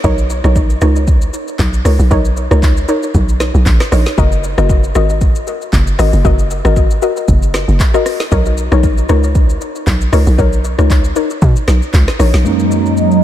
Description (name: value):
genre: amapiano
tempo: 116 BPM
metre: 4/4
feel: swing 55% on 16ths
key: unclear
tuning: A4 = 439 Hz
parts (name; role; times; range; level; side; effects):
- soft round pluck; stabs; 0.0-12.4 s; D#4 to D#5; -18 LUFS; left 3 dB; chorus, analog delay
- hollow log drum bass; bass; 0.0-12.4 s; F#1 to B2; -12 LUFS; equal; none
- deep house drum kit; drums; 0.0-13.2 s; handclaps, hi-hat, kick drum, rim click, shaker, snare drum; -15 LUFS; equal; none
- tine electric piano; accompaniment; 12.4-13.2 s; F#2 to D#4; -12 LUFS; right 1 dB; medium stereo tremolo
- hollow soft pad; sustained chords; 12.5-13.2 s; F#3 to A#5; -12 LUFS; right 4 dB; ensemble chorus, sidechain pumping
room: light reverb, digital ambience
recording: none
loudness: -10 LUFS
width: side -12 dB against mid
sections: 0.0-12.5 A section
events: drop 0.0-12.5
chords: 0.0 Bmaj9; 4.2 F#6; 8.1 Bmaj9; 12.5 F#6